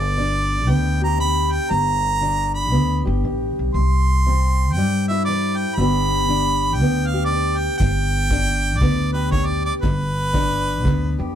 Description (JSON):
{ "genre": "acoustic country blues, solo or duo", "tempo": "118 BPM", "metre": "4/4", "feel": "swing 65% on 8ths", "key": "G major", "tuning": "A4 = 440 Hz", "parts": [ { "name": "bright harmonica", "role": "melody", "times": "0.0-11.3 s", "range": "B4 to C6", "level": "-22 LUFS", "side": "right 2 dB", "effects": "none" }, { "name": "fingerpicked steel-string acoustic guitar", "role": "accompaniment", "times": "0.0-11.4 s", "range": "G2 to G4", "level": "-25 LUFS", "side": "left 2 dB", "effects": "none" }, { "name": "upright bass", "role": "bass", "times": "0.0-11.4 s", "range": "G1 to G2", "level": "-20 LUFS", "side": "equal", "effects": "none" }, { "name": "kick drum", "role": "drums", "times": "7.8-11.0 s", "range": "none", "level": "-23 LUFS", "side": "equal", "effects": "none" } ], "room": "light reverb", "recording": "none", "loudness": "-17 LUFS", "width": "side -9 dB against mid", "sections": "0.0-11.4 A section", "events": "none", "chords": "0.0 G; 3.8 C; 5.8 G", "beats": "0.19 0.70 1.21 | 1.72 2.22 2.73 3.24 | 3.75 4.26 4.77 5.28 | 5.78 6.29 6.80 7.31 | 7.82 8.32 8.83 9.34 | 9.85 10.35 10.86" }